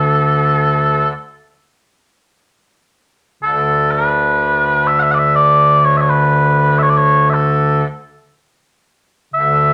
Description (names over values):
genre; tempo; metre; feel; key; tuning
celtic folk; 60-65 BPM; 3/4; rubato; unclear; A4 = 438 Hz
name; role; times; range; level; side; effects
mellow small bagpipes; solo; 0.0-9.7 s; D2 to F#5; -14 LUFS; equal; none
room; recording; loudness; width
wet studio reverb, RT60 0.8 s; none; -14 LUFS; mono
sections
0.0-9.7 A section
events
none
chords
none